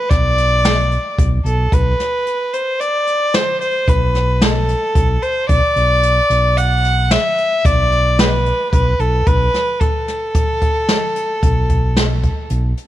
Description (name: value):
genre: progressive instrumental, band music in an uneven meter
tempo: 111 BPM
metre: 7/4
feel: straight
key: unclear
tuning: A4 = 439 Hz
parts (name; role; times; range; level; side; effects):
- warm violin; melody; 0.0-12.5 s; A4 to F#5; -17 LUFS; equal; none
- fingered electric bass; bass; 0.1-12.7 s; B1; -16 LUFS; equal; none
- jazz brush drum kit; drums; 0.1-12.9 s; hi-hat, kick drum, snare drum; -18 LUFS; equal; none
room: light reverb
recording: 1960s-style stereo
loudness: -13 LUFS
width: side -13 dB against mid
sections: 0.0-12.9 A section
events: none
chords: 0.0 Asus2/B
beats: 0.10 0.64 1.18 | 1.72 2.25 2.79 3.33 3.87 4.41 4.95 | 5.49 6.03 6.57 7.11 7.64 8.18 8.72 | 9.26 9.80 10.34 10.88 11.42 11.96 12.50